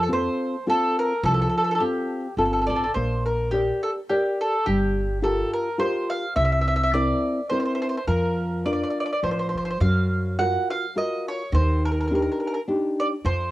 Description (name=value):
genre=italian folk, Italian serenade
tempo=105 BPM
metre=3/4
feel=swing 54% on 8ths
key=Bb major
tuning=A4 = 440 Hz
part: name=mandolin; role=melody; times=0.0-13.5 s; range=G4 to Gb5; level=-25 LUFS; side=equal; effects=cassette tape, plate reverb
part: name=nylon-string guitar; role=accompaniment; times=0.0-13.5 s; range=C3 to D5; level=-25 LUFS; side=left 1 dB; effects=cassette tape, plate reverb
part: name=upright bass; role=bass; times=0.0-13.5 s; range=G1 to Gb2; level=-25 LUFS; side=equal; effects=none
room=moderate booth ambience, RT60 0.2 s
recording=home recording on cassette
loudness=-21 LUFS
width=side -16 dB against mid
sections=0.0-3.0 A section; 3.0-13.5 B section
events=none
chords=0.0 F; 3.0 Bb6; 4.7 Gm7; 6.4 C7; 8.1 Bb/F; 9.2 F; 9.8 Gbmaj7; 11.5 Ebmaj7